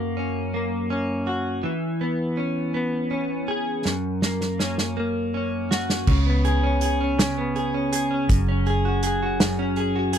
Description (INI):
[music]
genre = six-eight pop ballad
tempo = 54 BPM (dotted quarters)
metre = 6/8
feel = straight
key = unclear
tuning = A4 = 440 Hz
[part]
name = direct-recorded clean electric guitar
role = accompaniment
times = 0.0-10.2 s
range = F#2 to G#4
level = -23 LUFS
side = equal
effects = double-tracked left and right
[part]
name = unplugged drum kit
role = drums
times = 3.9-10.2 s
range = crash cymbal, hi-hat, kick drum, snare drum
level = -23 LUFS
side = right 1 dB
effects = none
[part]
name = vintage muted fingered electric bass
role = bass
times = 6.1-10.2 s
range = F#1 to C#2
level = -24 LUFS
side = equal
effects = none
[sound]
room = little or no reverb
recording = dry, close 1970s-style studio recording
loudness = -21 LUFS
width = side -9 dB against mid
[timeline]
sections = 0.0-6.1 A section; 6.1-10.2 B section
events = drum fill 3.8-6.1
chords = 0.0 F#; 1.6 C#m7/E; 3.8 F#; 6.1 C#5; 8.3 F#sus2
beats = 0.53 | 1.64 2.74 | 3.85 4.96 | 6.08 7.19 | 8.30 9.40